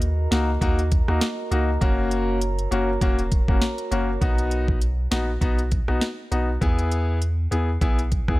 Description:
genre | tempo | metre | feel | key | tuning
dancehall | 100 BPM | 4/4 | swing 56% on 16ths | B major | A4 = 440 Hz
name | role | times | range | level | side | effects
glass harmonica | sustained chords | 0.0-4.2 s | F#4 to A#5 | -32 LUFS | right 3 dB | sidechain pumping
punchy sub bass | bass | 0.0-8.4 s | E1 to E2 | -24 LUFS | equal | none
afro-pop drum kit | drums | 0.0-8.4 s | hi-hat, kick drum, rim click, snare drum | -23 LUFS | equal | none
clear concert grand piano | accompaniment | 0.3-8.4 s | A#3 to G#4 | -26 LUFS | left 2 dB | sidechain pumping
room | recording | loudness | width
studio reverb | none | -20 LUFS | side -19 dB against mid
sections
0.0-4.2 A section; 4.2-8.4 B section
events
none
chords
0.0 D#m; 1.8 F#; 4.2 B; 6.6 E

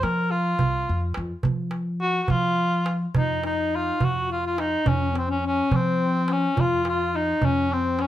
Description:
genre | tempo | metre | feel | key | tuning
Arabic maqam ensemble | 70 BPM (dotted quarters) | 6/8 | straight | unclear | A4 = 439 Hz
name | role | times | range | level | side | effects
warm cor anglais | melody | 0.0-8.1 s | C4 to Bb4 | -25 LUFS | equal | plate reverb
upright bass | bass | 0.0-8.1 s | C2 to F3 | -28 LUFS | left 1 dB | none
darbuka | percussion | 0.0-8.1 s | none | -26 LUFS | right 3 dB | none
breathy mellow ney | second line | 3.2-8.1 s | C4 to Gb4 | -27 LUFS | left 5 dB | none
room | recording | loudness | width
moderate studio ambience, RT60 0.5 s | none | -21 LUFS | side -12 dB against mid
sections
0.0-3.2 A section; 3.2-8.1 B section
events
none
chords
none

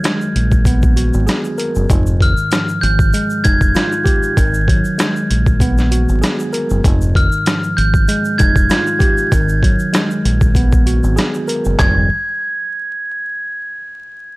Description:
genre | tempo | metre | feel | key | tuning
hip hop, boom-bap hip-hop | 97 BPM | 4/4 | swing 54% on 16ths | F minor | A4 = 440 Hz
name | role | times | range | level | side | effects
tine electric piano | accompaniment | 0.0-12.1 s | Ab2 to Bb4 | -19 LUFS | equal | medium stereo tremolo, high-pass filter, low-pass filter
boom bap sampler-style drum kit | drums | 0.0-11.9 s | handclaps, hi-hat, kick drum, rim click, snare drum, toms | -15 LUFS | equal | none
tube shaker | percussion | 0.0-12.1 s | none | -38 LUFS | left 2 dB | none
deep dub fingered electric bass | bass | 0.4-12.1 s | F1 to Bb1 | -16 LUFS | equal | none
glockenspiel with hard plastic mallets | melody | 2.2-12.1 s | F6 to Ab6 | -20 LUFS | right 1 dB | high-pass filter, low-pass filter, analog delay
room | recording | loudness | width
little or no reverb | dry, gritty hardware recording, vinyl crackle | -12 LUFS | side -21 dB against mid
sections
0.0-1.9 A section; 1.9-11.8 B section; 11.8-14.3 C section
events
none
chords
0.0 Abm9; 1.9 Fm9; 4.4 Abm9; 6.8 Fm9; 9.3 Abm9; 11.8 Fm9

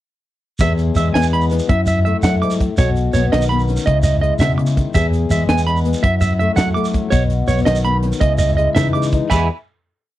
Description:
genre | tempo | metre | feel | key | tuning
highlife guitar band | 110 BPM (dotted quarters) | 12/8 | straight | E major | A4 = 437 Hz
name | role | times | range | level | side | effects
fingerpicked steel-string acoustic guitar | accompaniment | 0.6-9.5 s | E2 to G#4 | -21 LUFS | left 6 dB | none
electric guitar at the edge of break-up | arpeggios | 0.6-9.5 s | C#5 to D6 | -20 LUFS | right 4 dB | slapback echo
fingered electric bass | bass | 0.6-9.5 s | B1 to F#3 | -18 LUFS | equal | none
tight funk drum kit | drums | 0.6-9.4 s | crash cymbal, hi-hat, kick drum, snare drum | -19 LUFS | equal | none
shekere | percussion | 0.6-9.5 s | none | -23 LUFS | right 1 dB | none
room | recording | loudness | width
little or no reverb | dry, close 1970s-style studio recording | -14 LUFS | side -14 dB against mid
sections
0.6-9.3 groove; 9.3-10.2 final chord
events
none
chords
0.6 E; 1.7 F#m7; 2.8 Badd9; 3.9 C#madd9; 4.9 E; 6.0 F#m7; 7.1 Badd9; 8.2 C#madd9; 9.3 E

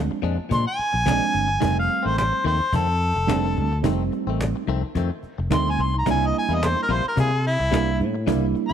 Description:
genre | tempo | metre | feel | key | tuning
straight-eighth soul blues | 108 BPM | 4/4 | swing 55% on 16ths | F mixolydian | A4 = 440 Hz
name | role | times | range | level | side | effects
reed electric piano | accompaniment | 0.0-8.7 s | F3 to E4 | -26 LUFS | right 11 dB | none
fingered electric bass | bass | 0.0-8.7 s | F1 to C3 | -24 LUFS | left 1 dB | none
direct-recorded clean electric guitar | stabs | 0.1-8.7 s | F2 to E4 | -31 LUFS | left 11 dB | none
cajon | drums | 0.2-8.6 s | none | -28 LUFS | left 1 dB | none
warm harmonica | melody | 0.5-8.7 s | E4 to C6 | -23 LUFS | equal | overdrive
room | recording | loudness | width
light reverb, small room ambience | 1960s-style stereo with parts hard left and right | -20 LUFS | side -8 dB against mid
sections
0.0-8.7 A section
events
kick and snare drop out 5.8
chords
0.0 Bb7; 1.6 F7; 6.1 C7

